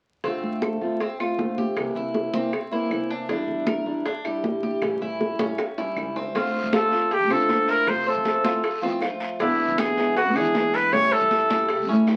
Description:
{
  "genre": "latin, Cuban son and guajira",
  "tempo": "157 BPM",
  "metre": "4/4",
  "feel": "straight",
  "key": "D minor",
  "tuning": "A4 = 441 Hz",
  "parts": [
    { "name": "picked acoustic archtop guitar", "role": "accompaniment", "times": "0.2-12.2 s", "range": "B2 to F4", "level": "-31 LUFS", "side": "equal", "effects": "none" },
    { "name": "Cuban tres", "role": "arpeggios", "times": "0.2-12.2 s", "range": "C4 to C#5", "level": "-33 LUFS", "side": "equal", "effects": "none" },
    { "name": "upright bass", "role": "bass", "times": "0.2-12.2 s", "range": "A1 to F3", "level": "-32 LUFS", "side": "equal", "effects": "none" },
    { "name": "bongos", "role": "percussion", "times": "0.2-12.2 s", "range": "none", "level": "-33 LUFS", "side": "equal", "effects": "none" },
    { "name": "congas", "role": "percussion", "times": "0.2-12.2 s", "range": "none", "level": "-33 LUFS", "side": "equal", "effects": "none" },
    { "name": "claves", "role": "percussion", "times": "0.6-12.2 s", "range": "none", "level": "-39 LUFS", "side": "equal", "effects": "none" },
    { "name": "warm trumpet", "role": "melody", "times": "6.4-11.9 s", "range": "E4 to C#5", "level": "-23 LUFS", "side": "equal", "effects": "none" },
    { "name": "guiro", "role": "percussion", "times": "6.4-12.2 s", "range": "none", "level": "-40 LUFS", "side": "equal", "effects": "none" }
  ],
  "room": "wet small room reverb, RT60 0.5 s",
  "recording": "very old 78 rpm record, vinyl crackle",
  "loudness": "-24 LUFS",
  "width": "mono",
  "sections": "0.2-6.3 A section; 6.3-12.2 B section",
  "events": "drum fill 5.4-6.3",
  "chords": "0.2 Dm7; 1.8 C7; 3.3 Em7b5; 4.8 A7; 6.3 Dm7; 7.9 Fmaj7; 9.4 E7; 10.9 A7"
}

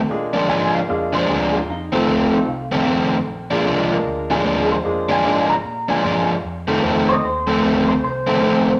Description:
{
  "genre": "blues",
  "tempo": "151 BPM",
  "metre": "4/4",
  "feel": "swing 63% on 8ths",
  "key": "unclear",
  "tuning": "A4 = 436 Hz",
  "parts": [
    { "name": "clear grand piano", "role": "accompaniment", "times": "0.1-7.2 s", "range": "Ab3 to Bb4", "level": "-27 LUFS", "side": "equal", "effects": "none" },
    { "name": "vintage muted fingered electric bass", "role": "bass", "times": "0.1-8.8 s", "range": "A1 to Bb2", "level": "-34 LUFS", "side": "equal", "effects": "none" },
    { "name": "overdriven semi-hollow guitar", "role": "riff", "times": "0.3-8.7 s", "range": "F2 to D4", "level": "-20 LUFS", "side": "equal", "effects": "spring reverb" },
    { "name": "clean electric guitar", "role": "second line", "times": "0.5-8.8 s", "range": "Eb4 to Bb5", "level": "-25 LUFS", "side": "equal", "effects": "phaser" }
  ],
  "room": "wet studio reverb, RT60 0.6 s",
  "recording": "none",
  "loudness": "-19 LUFS",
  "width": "mono",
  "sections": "0.0-8.8 A section",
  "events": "clean electric guitar solo 0.0-8.8",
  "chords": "0.1 Bb7; 1.7 F7; 3.3 Bb7; 6.4 F7"
}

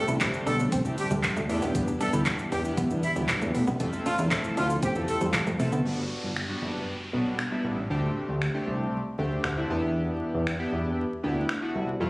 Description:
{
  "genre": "dance-pop",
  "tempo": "117 BPM",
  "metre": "4/4",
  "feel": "straight",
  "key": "G major",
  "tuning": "A4 = 439 Hz",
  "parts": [
    { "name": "warm horn section", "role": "melody", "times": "0.0-5.2 s", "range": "E4 to A4", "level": "-31 LUFS", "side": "equal", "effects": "plate reverb, analog delay" },
    { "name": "chorused polysynth", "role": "accompaniment", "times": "0.0-12.1 s", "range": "G3 to A4", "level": "-31 LUFS", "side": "equal", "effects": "sidechain pumping, plate reverb" },
    { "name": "string machine, cellos", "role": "sustained chords", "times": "0.0-5.8 s", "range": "D3 to E5", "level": "-36 LUFS", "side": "equal", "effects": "none" },
    { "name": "clean electric guitar", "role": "riff", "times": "0.0-5.8 s", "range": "G3 to E4", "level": "-31 LUFS", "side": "right 1 dB", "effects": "lush chorus" },
    { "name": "chorused synth bass", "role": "bass", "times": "0.1-12.1 s", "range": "F#1 to F2", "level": "-28 LUFS", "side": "equal", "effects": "sidechain pumping" },
    { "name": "pop drum kit", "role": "drums", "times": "0.1-11.6 s", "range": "finger snaps, handclaps, hi-hat, kick drum, shaker", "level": "-30 LUFS", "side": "equal", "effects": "none" },
    { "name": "group handclap", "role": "percussion", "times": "0.2-5.5 s", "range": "none", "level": "-38 LUFS", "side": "equal", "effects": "none" },
    { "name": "downlifter", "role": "sound effects", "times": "5.9-10.0 s", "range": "none", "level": "-40 LUFS", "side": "equal", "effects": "none" }
  ],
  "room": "light reverb",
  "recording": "recorded on a phone in the room, club reverb, vinyl crackle, compression",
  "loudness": "-25 LUFS",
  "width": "side -23 dB against mid",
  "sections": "0.0-5.9 A section; 5.9-12.1 B section",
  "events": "drop 0.0-5.9",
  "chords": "0.0 D7sus4; 3.8 Fmaj7; 5.9 Gmaj7; 7.9 D7sus4; 9.7 Em7"
}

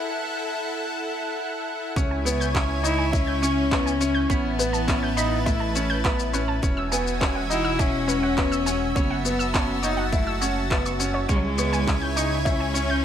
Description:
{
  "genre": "piano and strings electronica",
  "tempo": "103 BPM",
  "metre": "4/4",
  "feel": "straight",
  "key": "C# minor",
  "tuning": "A4 = 439 Hz",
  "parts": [
    { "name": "lush unison pad", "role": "sustained chords", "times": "0.0-13.0 s", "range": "E4 to A5", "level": "-29 LUFS", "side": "equal", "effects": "chorus" },
    { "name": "warbly dusty pluck", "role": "arpeggios", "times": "2.0-12.9 s", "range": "B4 to G6", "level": "-32 LUFS", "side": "right 2 dB", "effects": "chorus, sidechain pumping, ping-pong delay" },
    { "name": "bright grand piano", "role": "riff", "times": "2.0-12.9 s", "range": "B3 to E4", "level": "-28 LUFS", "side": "equal", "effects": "ping-pong delay" },
    { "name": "dark detuned saw bass", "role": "bass", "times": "2.0-13.0 s", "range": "E1 to C#2", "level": "-28 LUFS", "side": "equal", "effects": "sidechain pumping, high-pass filter" },
    { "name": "electronic kick drum", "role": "drums", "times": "2.0-12.6 s", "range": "none", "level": "-25 LUFS", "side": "equal", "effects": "none" },
    { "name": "electronic shaker and handclaps", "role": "drums", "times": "2.0-12.9 s", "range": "none", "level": "-29 LUFS", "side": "left 2 dB", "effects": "none" },
    { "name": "warm cello", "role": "melody", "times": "2.8-13.0 s", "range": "F#3 to E4", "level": "-27 LUFS", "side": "left 2 dB", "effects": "ping-pong delay" }
  ],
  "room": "light reverb, digital ambience",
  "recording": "none",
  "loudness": "-21 LUFS",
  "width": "side -9 dB against mid",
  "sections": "0.0-2.0 A section; 2.0-13.0 B section",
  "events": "break 0.0-2.0; build-up 0.0-2.0; drop 2.0-13.0",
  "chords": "0.0 F#m7; 2.0 C#m; 4.3 Asus2; 6.6 Eadd9; 9.0 F#m7; 11.3 C#m"
}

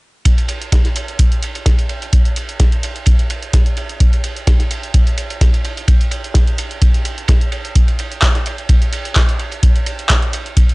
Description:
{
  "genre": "acid house",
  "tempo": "128 BPM",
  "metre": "4/4",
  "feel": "swing 54% on 16ths",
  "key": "none",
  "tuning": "none",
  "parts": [
    { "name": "electronic kick drum", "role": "drums", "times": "0.3-10.7 s", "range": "none", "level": "-13 LUFS", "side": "equal", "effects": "none" },
    { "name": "punchy analog drum machine", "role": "drums", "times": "0.3-10.7 s", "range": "handclaps, hi-hat", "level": "-21 LUFS", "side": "right 1 dB", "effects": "overdrive" },
    { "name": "warm soul drum kit", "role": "drums", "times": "0.3-10.7 s", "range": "ride cymbal, snare drum", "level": "-26 LUFS", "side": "right 2 dB", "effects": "high-pass filter on cymbals, high-pass filter on snare, high-pass filter on room" }
  ],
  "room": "little or no reverb",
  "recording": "dry, gritty hardware recording, cassette tape, nothing above 10.5 kHz",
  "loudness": "-13 LUFS",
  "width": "side -25 dB against mid",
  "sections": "0.3-10.7 A section",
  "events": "none",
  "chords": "none"
}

